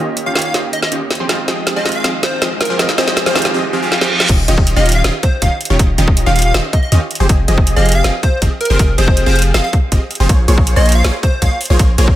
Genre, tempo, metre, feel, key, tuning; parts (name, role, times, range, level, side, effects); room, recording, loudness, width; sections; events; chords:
future bass; 160 BPM; 4/4; half-time; F minor; A4 = 443 Hz
bright concert grand piano; accompaniment; 0.0-4.3 s; Eb3 to G4; -25 LUFS; right 3 dB; sidechain pumping, dub echo
airy breathy pad; sustained chords; 0.0-3.5 s; Eb3 to Db5; -31 LUFS; left 1 dB; chorus, sidechain pumping
supersaw stab; riff; 0.0-12.2 s; Eb3 to F5; -19 LUFS; right 1 dB; sidechain pumping, low-pass filter
riser and reverse cymbal; sound effects; 2.3-4.3 s; -23 LUFS; right 2 dB
trap drum kit; drums; 0.2-12.1 s; crash cymbal, hi-hat, snare drum; -18 LUFS; equal; small room ambience
plucky unison lead; melody; 0.3-11.6 s; Bb4 to F5; -20 LUFS; equal; sidechain pumping, dub echo
long sustained 808-style bass; bass; 4.3-12.2 s; Eb1 to Eb2; -13 LUFS; equal; sidechain pumping
electronic kick drum; drums; 4.3-12.2 s; -13 LUFS; equal; small room ambience
light reverb, digital ambience; -11 LUFS; side -13 dB against mid
0.0-4.3 A section; 4.3-12.2 B section
build-up 0.0-4.3; drum fill 0.0-3.5, 3.9-4.3; filter sweep on supersaw synth 0.0-4.3; reverse cymbal 3.5-4.3; drop 4.3-12.2
0.0 Eb7; 1.1 Fm7; 4.3 Eb7; 7.1 Fm7; 10.3 Bbm7